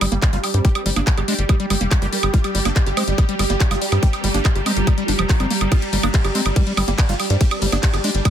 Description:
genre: psychedelic trance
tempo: 142 BPM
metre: 4/4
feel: straight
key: G minor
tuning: A4 = 440 Hz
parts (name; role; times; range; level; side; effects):
- supersaw stab; melody; 0.0-8.3 s; G3 to G4; -27 LUFS; right 1 dB; phaser, sidechain pumping, tape echo
- swarming drone; sustained chords; 0.0-8.3 s; G3 to G4; -27 LUFS; right 2 dB; built-in reverb, phaser, sidechain pumping
- overdriven acid bass; riff; 0.0-8.3 s; F3 to G4; -26 LUFS; moving between left 2 dB and right 5 dB; distortion, auto-pan, sidechain pumping, dub echo
- tight sequencer bass; bass; 0.0-8.2 s; F1 to G2; -21 LUFS; equal; none
- drum and bass drum kit; drums; 0.0-8.3 s; handclaps, hi-hat, ride cymbal, woodblock; -24 LUFS; right 1 dB; none
- deep dark ambient pad; texture; 0.0-8.3 s; G4 to Bb5; -30 LUFS; right 2 dB; chorus, built-in reverb, sidechain pumping
- electronic kick drum; drums; 0.2-8.3 s; none; -16 LUFS; equal; none
- vowel-sweep wobble bass; second line; 0.5-7.7 s; F3 to C4; -36 LUFS; left 3 dB; none
room: digital ambience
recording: dense, heavily limited modern master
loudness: -16 LUFS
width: side -10 dB against mid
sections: 0.0-8.3 A section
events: none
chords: 0.0 G5

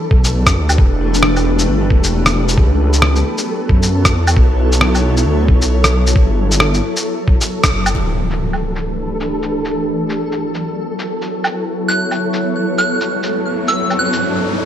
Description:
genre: future garage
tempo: 134 BPM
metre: 4/4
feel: swing 61% on 16ths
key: unclear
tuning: A4 = 442 Hz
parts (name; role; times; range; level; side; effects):
- granular cloud pad; sustained chords; 0.0-14.7 s; G2 to C#5; -20 LUFS; equal; built-in reverb, sidechain pumping
- flickering grainy texture; texture; 0.0-14.2 s; A4; -26 LUFS; equal; built-in reverb
- swelling detuned saw bass; bass; 0.1-7.9 s; E1 to G2; -15 LUFS; equal; sidechain pumping
- electronic kick drum; drums; 0.1-7.7 s; none; -13 LUFS; equal; studio reverb
- electronic shaker, rim click and woodblock; drums; 0.2-14.2 s; none; -17 LUFS; equal; low-pass filter on perc, studio reverb, low-pass filter on snare
- impact and riser; sound effects; 7.9-14.7 s; none; -24 LUFS; equal; none
- soft synth bell; melody; 11.9-14.2 s; E6 to F#6; -18 LUFS; right 1 dB; chorus, phaser, digital delay
room: light reverb, digital ambience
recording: none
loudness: -13 LUFS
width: side -10 dB against mid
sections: 0.0-7.9 A section; 7.9-14.7 B section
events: band accent 7.6; impact 7.9-9.7; filter sweep on ambient pad 7.9-14.7; riser 12.3-14.7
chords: 0.0 Gadd9; 0.8 Em; 2.6 A69/C#; 4.4 B7(no3); 6.2 Gadd9; 7.1 F#sus4; 7.9 Em; 9.7 A69/F#; 13.3 Gadd9

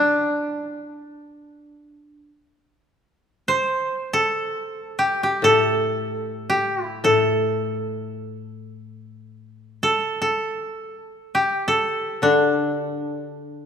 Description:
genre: japanese traditional, Japanese chamber music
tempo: free time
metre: none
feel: none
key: unclear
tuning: A4 = 440 Hz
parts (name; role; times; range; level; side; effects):
- koto; melody; 0.0-13.7 s; D4 to C5; -21 LUFS; equal; none
- koto; accompaniment; 5.4-13.7 s; A2 to D3; -23 LUFS; left 2 dB; none
room: moderate concert hall reverb, RT60 2.0 s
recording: minimal, uncompressed stereo recording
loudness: -20 LUFS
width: side -7 dB against mid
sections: 0.0-2.8 A section; 2.8-13.7 A section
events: none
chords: none

